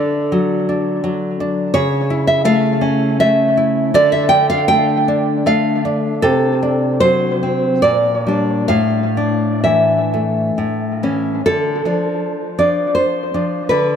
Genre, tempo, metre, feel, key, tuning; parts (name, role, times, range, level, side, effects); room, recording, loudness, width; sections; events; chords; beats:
romantic piece for solo classical guitar; 64-84 BPM; 3/4; rubato; D minor; A4 = 439 Hz
nylon-string guitar; solo; 0.0-14.0 s; A2 to G5; -14 LUFS; equal; analog delay
wet plate reverb, RT60 2.9 s; dreamy mix soaked in reverb; -14 LUFS; side -8 dB against mid
0.0-11.4 A section; 11.4-14.0 B section
0.0 D; 1.7 A/C#; 4.0 Dm; 6.2 D7/C; 7.8 Gm/Bb; 8.7 Asus4; 10.6 A; 11.4 Dm
0.30 1.02 | 1.74 2.47 3.20 | 3.95 4.70 5.47 | 6.24 7.03 7.85 | 8.72 9.65 10.55 | 11.42 12.20 12.94 | 13.69